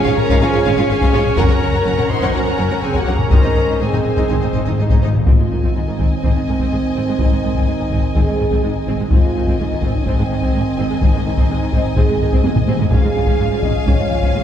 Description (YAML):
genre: cinematic, epic orchestral film score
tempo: 125 BPM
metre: 4/4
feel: straight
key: Ab mixolydian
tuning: A4 = 441 Hz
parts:
  - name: rich studio violin section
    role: melody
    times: 0.0-14.4 s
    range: Gb5 to C6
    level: -29 LUFS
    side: left 3 dB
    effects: none
  - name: rich symphonic string section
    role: sustained chords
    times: 0.0-5.3 s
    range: Db4 to Gb5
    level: -26 LUFS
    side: right 1 dB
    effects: none
  - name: warm French horn section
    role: sustained chords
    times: 0.0-14.4 s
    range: C4 to Eb5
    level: -22 LUFS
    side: equal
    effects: none
  - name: clear trumpet section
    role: stabs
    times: 0.0-4.8 s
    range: Bb3 to Eb4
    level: -24 LUFS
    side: right 2 dB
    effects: none
  - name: warm symphonic violin section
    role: second line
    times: 0.1-14.4 s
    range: C5 to Gb5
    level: -28 LUFS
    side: left 3 dB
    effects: none
  - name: rich symphonic viola section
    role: accompaniment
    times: 0.1-14.4 s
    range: Eb3 to Bb4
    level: -27 LUFS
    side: equal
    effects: none
  - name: rich symphonic cello section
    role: bass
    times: 0.1-14.4 s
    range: Gb2 to Ab2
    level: -24 LUFS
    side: right 3 dB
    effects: none
  - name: taiko ensemble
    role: drums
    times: 0.1-14.4 s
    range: none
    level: -17 LUFS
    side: left 2 dB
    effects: none
  - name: warm trombone section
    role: sustained chords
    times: 0.4-14.4 s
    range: Eb3 to Db4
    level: -27 LUFS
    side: right 3 dB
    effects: none
  - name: rich symphonic double bass section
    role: bass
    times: 0.4-14.4 s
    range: Gb1 to Ab1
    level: -24 LUFS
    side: right 2 dB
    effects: none
  - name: timpani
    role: percussion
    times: 3.3-6.0 s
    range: Ab2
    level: -23 LUFS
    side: equal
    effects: none
room: wet scoring stage reverb, RT60 1.8 s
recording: heard from further back in the room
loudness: -14 LUFS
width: side -9 dB against mid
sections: 0.0-5.3 A section; 5.3-14.4 B section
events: timpani fill 3.3-5.3; drum fill 12.4-12.9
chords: 0.0 Db/Ab; 1.4 Gb; 3.3 Ab; 12.9 Db/Ab